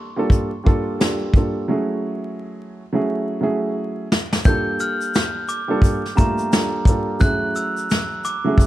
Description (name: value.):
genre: hip hop, boom-bap hip-hop.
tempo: 87 BPM.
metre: 4/4.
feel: swing 60% on 16ths.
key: unclear.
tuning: A4 = 441 Hz.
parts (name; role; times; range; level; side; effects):
dark upright piano; accompaniment; 0.0-8.7 s; F#3 to A4; -22 LUFS; right 2 dB; high-pass filter, low-pass filter.
soft brush drum kit; drums; 0.3-8.7 s; hi-hat, kick drum, shaker, snare drum; -17 LUFS; equal; none.
tube shaker; percussion; 4.4-8.7 s; none; -41 LUFS; left 8 dB; none.
glockenspiel with soft plastic mallets; melody; 4.5-8.7 s; Bb5 to G6; -25 LUFS; equal; high-pass filter, low-pass filter.
room: studio reverb.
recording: vinyl crackle.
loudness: -18 LUFS.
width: side -14 dB against mid.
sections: 0.0-4.5 A section; 4.5-8.7 B section.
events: break 0.0-4.5; drum fill 3.1-4.5.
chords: 0.0 Gm9; 1.7 F#m9; 4.5 Gm9; 7.2 F#m9.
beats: 0.32 1.00 | 1.70 2.38 3.07 3.76 | 4.45 5.14 5.83 6.52 | 7.21 7.90 8.59.